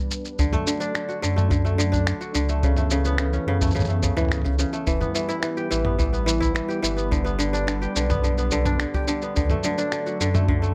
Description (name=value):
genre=folktronica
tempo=107 BPM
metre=4/4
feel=straight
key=unclear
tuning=A4 = 440 Hz
part: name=warm analog pad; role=sustained chords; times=0.0-10.7 s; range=E3 to B4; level=-34 LUFS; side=equal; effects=chorus
part: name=lo-fi sampler-style drum kit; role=drums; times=0.1-10.7 s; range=finger snaps, shaker, toms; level=-31 LUFS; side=equal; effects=none
part: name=kora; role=arpeggios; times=0.4-10.7 s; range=C#3 to G4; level=-28 LUFS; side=equal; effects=delay
part: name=warm sub bass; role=bass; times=0.4-10.7 s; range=E1 to F#2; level=-26 LUFS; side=equal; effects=none
part: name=kick drum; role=drums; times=0.4-10.6 s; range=none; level=-28 LUFS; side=equal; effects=none
room=light reverb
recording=none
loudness=-23 LUFS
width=mono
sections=0.0-10.7 A section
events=none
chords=0.4 D; 2.6 Aadd9/C#; 4.9 Em; 7.1 G; 9.4 D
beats=| 0.39 0.95 1.51 2.07 | 2.63 3.19 3.76 4.32 | 4.88 5.44 6.00 6.56 | 7.12 7.68 8.24 8.80 | 9.36 9.92 10.48